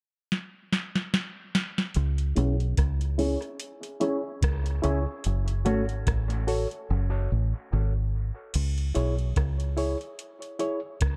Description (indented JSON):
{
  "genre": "dub reggae",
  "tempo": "73 BPM",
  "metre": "4/4",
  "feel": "swing 57% on 16ths",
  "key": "C# minor",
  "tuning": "A4 = 440 Hz",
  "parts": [
    { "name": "soft vintage rhythm box", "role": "drums", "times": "0.3-11.2 s", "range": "crash cymbal, hi-hat, kick drum, rim click, snare drum", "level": "-31 LUFS", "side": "equal", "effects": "none" },
    { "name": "deep dub fingered electric bass", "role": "bass", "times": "2.0-11.2 s", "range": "F#1 to C#2", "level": "-28 LUFS", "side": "equal", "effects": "none" },
    { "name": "mellow electric guitar", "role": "accompaniment", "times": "2.4-5.8 s", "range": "A3 to G#4", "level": "-35 LUFS", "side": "equal", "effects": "low-pass filter, dub echo" },
    { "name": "reed electric piano", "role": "stabs", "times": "2.4-10.8 s", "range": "E4 to C#5", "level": "-35 LUFS", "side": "equal", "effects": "overdrive, low-pass filter, dub echo" }
  ],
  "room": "light reverb",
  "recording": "dark, warm production",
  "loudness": "-28 LUFS",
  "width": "mono",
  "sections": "0.0-2.0 A section; 2.0-8.5 B section; 8.5-11.2 C section",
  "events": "drum fill 0.3-2.0; filter sweep 2.0-8.5; drums muted 6.9-8.5",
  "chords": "0.0 N.C.; 2.0 C#m; 5.2 F#m; 8.5 C#m"
}